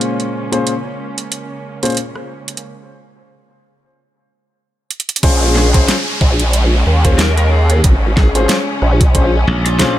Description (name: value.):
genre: glitch hop.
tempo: 92 BPM.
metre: 4/4.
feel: swing 57% on 16ths.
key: Bb minor.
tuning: A4 = 445 Hz.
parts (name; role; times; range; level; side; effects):
warm studio string section; sustained chords; 0.0-10.0 s; Db3 to Db4; -25 LUFS; equal; sidechain pumping, low-pass filter.
dark grand piano; stabs; 0.0-9.9 s; Bb2 to C5; -20 LUFS; left 2 dB; vintage 12-bit sampler grit, sidechain pumping, dub echo.
dubstep drum kit; drums; 0.0-9.9 s; crash cymbal, hi-hat, rim click, snare drum; -19 LUFS; right 1 dB; none.
formant-sweep wobble bass; bass; 5.2-9.5 s; Ab1 to Eb2; -13 LUFS; equal; chorus, tube saturation.
electronic kick drum; drums; 5.2-9.3 s; none; -12 LUFS; equal; none.
downlifter; sound effects; 5.2-10.0 s; none; -22 LUFS; equal; none.
lead guitar through a small cranked amp; melody; 5.6-9.9 s; F4 to Bb4; -24 LUFS; left 3 dB; overdrive, dub echo.
glassy slap bass; bass; 9.5-10.0 s; Bb1; -15 LUFS; equal; none.
room: little or no reverb.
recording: none.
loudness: -12 LUFS.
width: side -13 dB against mid.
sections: 0.0-5.2 A section; 5.2-10.0 B section.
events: filter sweep on string section 0.0-5.2; break 2.6-5.2; drum fill 4.9-5.2; drop 5.2-10.0.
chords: 0.0 Bbm9.